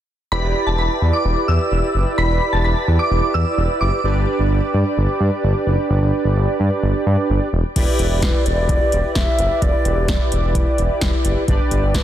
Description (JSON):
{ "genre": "synth-pop", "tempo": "129 BPM", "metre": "4/4", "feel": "straight", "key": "E minor", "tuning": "A4 = 441 Hz", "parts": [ { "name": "shimmering bell with halo", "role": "second line", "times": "0.3-3.9 s", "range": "A5 to E6", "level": "-23 LUFS", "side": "equal", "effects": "ensemble chorus, phaser, digital delay, shimmer reverb" }, { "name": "analog synth brass", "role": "accompaniment", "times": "0.3-12.0 s", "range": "D4 to D5", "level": "-21 LUFS", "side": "right 2 dB", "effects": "chorus, shimmer reverb" }, { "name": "smooth synth bass", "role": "bass", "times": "0.3-12.0 s", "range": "E1 to G2", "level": "-18 LUFS", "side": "equal", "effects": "none" }, { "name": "electro analog drum machine", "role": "drums", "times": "7.8-12.0 s", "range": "crash cymbal, hi-hat, kick drum, snare drum", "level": "-19 LUFS", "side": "equal", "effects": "overdrive" }, { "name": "bansuri", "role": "melody", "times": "8.2-12.0 s", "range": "B4 to E5", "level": "-24 LUFS", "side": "equal", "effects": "shimmer reverb" } ], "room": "light reverb", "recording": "dense, heavily limited modern master", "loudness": "-16 LUFS", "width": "side -11 dB against mid", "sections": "0.3-7.8 A section; 7.8-12.0 B section", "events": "none", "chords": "0.3 Em7; 4.0 G; 7.5 N.C.; 7.8 Em7; 11.5 G" }